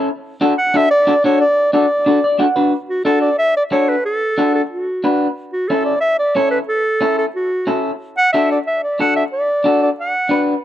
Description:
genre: latin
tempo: 182 BPM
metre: 4/4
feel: straight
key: D major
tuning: A4 = 438 Hz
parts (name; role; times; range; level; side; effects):
- electric guitar at the edge of break-up; accompaniment; 0.0-10.5 s; C#4 to F#5; -17 LUFS; left 1 dB; none
- warm clarinet; melody; 0.6-10.5 s; F#4 to F#5; -16 LUFS; right 1 dB; slapback echo
room: light reverb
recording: recorded outdoors, with no room sound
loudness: -14 LUFS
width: side -12 dB against mid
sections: 0.0-2.7 A section; 2.7-10.6 B section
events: clean electric guitar fill 2.1-2.7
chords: 0.1 D; 5.4 A; 8.0 D

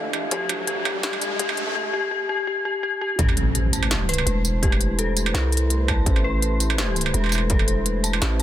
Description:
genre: half-time drum and bass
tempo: 167 BPM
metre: 4/4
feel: swing 54% on 16ths, half-time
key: A minor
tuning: A4 = 439 Hz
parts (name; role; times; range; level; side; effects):
- dark analog pad; sustained chords; 0.0-8.4 s; A3 to F5; -32 LUFS; right 1 dB; chorus, sidechain pumping
- dark detuned synth bell; arpeggios; 0.0-8.4 s; G4 to A5; -27 LUFS; left 3 dB; chorus, tremolo, digital delay
- growling 808-style bass; bass; 0.0-8.4 s; E1 to F2; -24 LUFS; equal; high-pass filter
- riser and impact; sound effects; 0.0-4.6 s; none; -29 LUFS; equal; none
- flickering grainy texture; texture; 0.0-1.8 s; A3 to A4; -44 LUFS; left 1 dB; none
- industrial drum kit; drums; 0.1-8.4 s; hi-hat, snare drum, struck metal, tambourine; -26 LUFS; right 2 dB; none
- electronic kick drum; drums; 0.3-0.9, 3.2-7.6 s; none; -22 LUFS; equal; distortion, high-pass filter on kick, high-pass filter on room
room: little or no reverb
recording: dense, heavily limited modern master, high-pass filter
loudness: -20 LUFS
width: side -12 dB against mid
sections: 0.0-3.2 A section; 3.2-8.4 B section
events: build-up 0.0-3.2; riser 0.0-1.8; filter sweep 0.0-3.2; drop 3.2-8.4; impact 3.2-4.6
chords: 0.0 Dmadd9; 3.2 Am

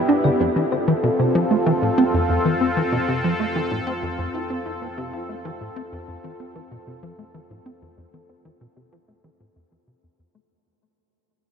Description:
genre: ambient, sequencer-driven space music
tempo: 95 BPM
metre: 4/4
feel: straight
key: F major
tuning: A4 = 440 Hz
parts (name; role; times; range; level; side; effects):
- sweeping resonant pad; sustained chords; 0.0-10.5 s; B3 to A4; -24 LUFS; equal; chorus
- plucky analog bass; riff; 0.0-10.4 s; F2 to D4; -22 LUFS; equal; analog chorus, ping-pong delay
- analog drone; bass; 0.0-10.5 s; F2 to G2; -42 LUFS; equal; chorus
room: wet huge ambient reverb, RT60 9.0 s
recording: dark, warm production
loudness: -19 LUFS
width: side -7 dB against mid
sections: 0.0-10.5 A section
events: fade-out on synth drone 0.0-10.5; fade-out 0.0-10.5; filter sweep on analog synth bass 0.0-10.5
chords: 0.4 F

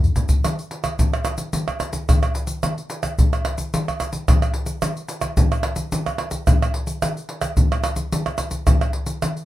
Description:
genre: samba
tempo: 109 BPM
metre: 4/4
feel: straight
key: none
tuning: none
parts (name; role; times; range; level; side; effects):
- surdo, tube shaker, pandeiro and tamborim; percussion; 0.0-9.4 s; none; -19 LUFS; equal; none
room: moderate studio ambience, RT60 0.5 s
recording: minimal, uncompressed stereo recording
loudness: -19 LUFS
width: side -14 dB against mid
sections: 0.4-9.4 A section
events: drum fill 0.0-0.4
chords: none

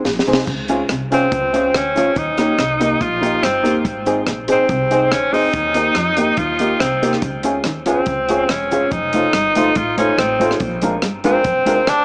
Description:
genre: ska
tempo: 142 BPM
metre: 4/4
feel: straight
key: unclear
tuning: A4 = 440 Hz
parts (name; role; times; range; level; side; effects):
- mellow electric guitar; riff; 0.0-12.0 s; Fb2 to F3; -31 LUFS; equal; none
- upright bass; bass; 0.0-12.0 s; Fb1 to F2; -32 LUFS; equal; none
- compact cocktail drum kit; drums; 0.1-12.0 s; crash cymbal, hi-hat, kick drum, rim click, snare drum; -25 LUFS; equal; none
- cabasa; percussion; 0.1-12.0 s; none; -49 LUFS; equal; none
- hollow-body jazz guitar; accompaniment; 0.3-11.8 s; Ab3 to Eb5; -25 LUFS; equal; tape echo
- dark upright piano; stabs; 0.3-11.8 s; Bb3 to Bb4; -24 LUFS; equal; none
- bright tenor saxophone; melody; 1.1-12.0 s; C4 to F4; -20 LUFS; equal; tape echo
room: moderate spring reverb, RT60 2.0 s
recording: small speaker sound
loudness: -17 LUFS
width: mono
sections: 0.5-12.0 A section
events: drum fill 0.0-0.5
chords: 0.5 Db; 2.2 Eb; 3.8 Ab; 5.5 Eb; 7.2 Db; 8.9 F7; 10.6 Bb7

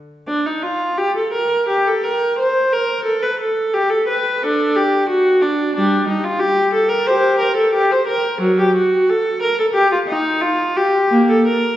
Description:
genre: classical, baroque-style suite movement for unaccompanied viola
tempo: 89 BPM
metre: 4/4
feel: rubato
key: G minor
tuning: A4 = 442 Hz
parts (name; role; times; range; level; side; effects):
- warm viola; solo; 0.3-11.8 s; F#3 to C5; -14 LUFS; equal; none
room: wet recital hall reverb, RT60 1.6 s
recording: heard from further back in the room, nothing above 7.9 kHz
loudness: -14 LUFS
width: side -13 dB against mid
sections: 0.3-11.8 A section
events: none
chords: none

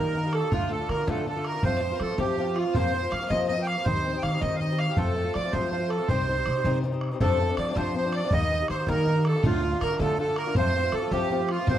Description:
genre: celtic folk, Celtic jig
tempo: 108 BPM (dotted quarters)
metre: 6/8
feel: straight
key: unclear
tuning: A4 = 441 Hz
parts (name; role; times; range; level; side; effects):
- accordion; melody; 0.0-11.8 s; F4 to G5; -28 LUFS; right 6 dB; none
- bright fiddle; second line; 0.0-11.8 s; F4 to F5; -35 LUFS; left 7 dB; none
- fingerpicked swing-style acoustic guitar; accompaniment; 0.0-11.8 s; D2 to F4; -30 LUFS; left 6 dB; none
- upright bass; bass; 0.0-11.8 s; C2 to F3; -29 LUFS; equal; none
- bodhran; percussion; 0.1-11.8 s; none; -31 LUFS; equal; none
room: little or no reverb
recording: dry, close 1970s-style studio recording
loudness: -23 LUFS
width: side -11 dB against mid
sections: 0.0-7.2 A section; 7.2-11.8 A section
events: none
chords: 0.0 Eb; 0.5 Dm; 1.6 F; 2.7 Fsus4; 3.9 Cm/Eb; 5.0 F; 6.1 Cm; 7.2 F6; 8.3 Eb; 9.4 Dm; 10.6 F

